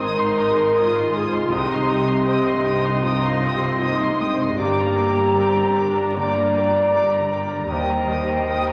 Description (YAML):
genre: cinematic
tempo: 78 BPM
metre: 4/4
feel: rubato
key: G phrygian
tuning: A4 = 441 Hz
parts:
  - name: muted studio violin section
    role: melody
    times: 0.0-8.7 s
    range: Bb5 to Eb6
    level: -32 LUFS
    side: equal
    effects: none
  - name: clear clarinet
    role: second line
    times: 0.0-8.7 s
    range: D5 to Eb5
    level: -33 LUFS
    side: equal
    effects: none
  - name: hollow flute section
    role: second line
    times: 0.0-8.7 s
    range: G5 to C6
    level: -29 LUFS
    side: equal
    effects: none
  - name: muted chamber violin section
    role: second line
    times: 0.0-8.7 s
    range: Bb4 to C6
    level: -37 LUFS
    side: equal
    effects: none
  - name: clear grand piano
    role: accompaniment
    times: 0.0-8.7 s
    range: C2 to C5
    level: -34 LUFS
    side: equal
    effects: none
  - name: muted studio viola section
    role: accompaniment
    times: 0.0-8.7 s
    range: G3 to F4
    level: -31 LUFS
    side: equal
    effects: none
  - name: mellow French horn section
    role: sustained chords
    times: 0.0-8.7 s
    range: Eb4 to D5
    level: -24 LUFS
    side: equal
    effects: none
  - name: concert harp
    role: arpeggios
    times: 0.0-8.7 s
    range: G2 to C5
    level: -39 LUFS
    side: equal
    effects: none
  - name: muted studio cello section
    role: bass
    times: 0.0-8.7 s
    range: Eb2 to C3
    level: -31 LUFS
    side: equal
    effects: none
  - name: muted studio double bass section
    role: bass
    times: 0.0-8.7 s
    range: G1 to Eb2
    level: -30 LUFS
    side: equal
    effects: none
room: wet scoring stage reverb, RT60 1.8 s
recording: vinyl crackle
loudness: -20 LUFS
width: mono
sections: 0.0-8.7 A section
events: none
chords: 0.0 Ab; 1.5 Cm; 4.6 Gm; 7.7 Eb